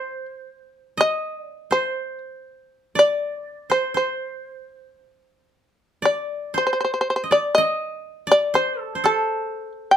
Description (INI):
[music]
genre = japanese traditional, Japanese chamber music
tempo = 57-64 BPM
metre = 2/4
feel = rubato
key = C kumoi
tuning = A4 = 440 Hz
[part]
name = shamisen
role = melody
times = 0.0-10.0 s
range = A4 to G5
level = -19 LUFS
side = left 1 dB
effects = none
[part]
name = koto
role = second line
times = 0.0-10.0 s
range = A4 to Eb5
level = -26 LUFS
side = right 1 dB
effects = none
[sound]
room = little or no reverb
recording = close, detailed microphones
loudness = -20 LUFS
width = side -10 dB against mid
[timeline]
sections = 0.0-6.0 A section; 6.0-10.0 B section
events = none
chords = none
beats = | 0.04 1.01 | 1.98 2.95 | 3.95 4.99 | 6.04 7.06 | 8.05 9.02